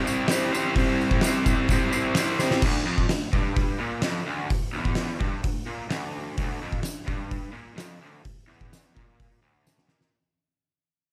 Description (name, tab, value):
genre	garage rock duo or trio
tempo	128 BPM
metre	4/4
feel	straight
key	D minor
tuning	A4 = 440 Hz
part	raw garage guitar	riff	0.0-10.1 s	D2 to C5	-29 LUFS	equal	overdrive
part	tambourine	percussion	0.1-2.5, 6.9-9.8 s	none	-38 LUFS	equal	none
part	oversized low-tuned drum kit	drums	0.3-10.1 s	crash cymbal, hi-hat, kick drum, snare drum	-29 LUFS	equal	none
room	light reverb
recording	none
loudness	-26 LUFS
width	mono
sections	0.0-2.6 A section; 2.6-10.1 B section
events	drum fill 2.4, 9.7-10.1; fade-out 2.6-10.1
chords	0.0 C; 2.6 Dm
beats	0.30 | 0.77 1.24 1.70 2.17 | 2.64 3.11 3.58 4.04 | 4.51 4.98 5.45 5.92 | 6.38 6.85 7.32 7.79 | 8.26 8.73 9.20 9.67